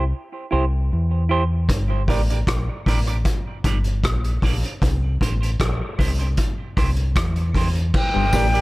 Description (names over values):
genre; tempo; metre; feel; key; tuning
dub reggae; 77 BPM; 4/4; straight; G dorian; A4 = 443 Hz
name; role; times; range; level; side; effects
semi-hollow electric guitar; accompaniment; 0.0-8.6 s; E4 to D5; -27 LUFS; right 4 dB; high-pass filter, tape echo
deep dub fingered electric bass; bass; 0.0-8.6 s; G1 to E2; -21 LUFS; equal; none
vintage drum kit; drums; 1.7-8.6 s; crash cymbal, hi-hat, kick drum, rim click; -22 LUFS; equal; none
bright silver concert flute; melody; 8.0-8.6 s; G5; -21 LUFS; equal; none
auto-wah clav; riff; 8.1-8.6 s; G2 to A2; -26 LUFS; left 8 dB; overdrive
tambourine; percussion; 8.3-8.5 s; none; -33 LUFS; right 2 dB; none
room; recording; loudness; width
small room ambience; none; -18 LUFS; side -20 dB against mid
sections
0.0-7.9 A section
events
break 0.0-1.7; filter sweep on clean electric guitar 0.0-7.9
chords
0.0 C; 1.7 Gm; 4.8 C; 7.9 Gm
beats
0.13 0.91 | 1.69 2.47 3.25 4.03 | 4.81 5.59 6.38 7.16 | 7.94